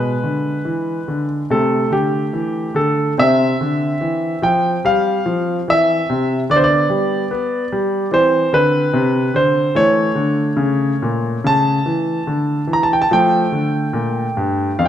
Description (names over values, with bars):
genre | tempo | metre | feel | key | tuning
classical, baroque-style suite movement for grand piano | 73 BPM | 4/4 | rubato | unclear | A4 = 440 Hz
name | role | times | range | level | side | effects
clear grand piano | solo | 0.0-14.9 s | F2 to Bb5 | -15 LUFS | equal | none
room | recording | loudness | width
moderate recital hall reverb, RT60 1.4 s | none | -15 LUFS | side -10 dB against mid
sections
0.0-14.9 A section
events
none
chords
0.0 E7/B; 1.5 Am/C; 3.2 C; 6.5 G/D; 8.1 C; 9.8 A; 13.1 Dm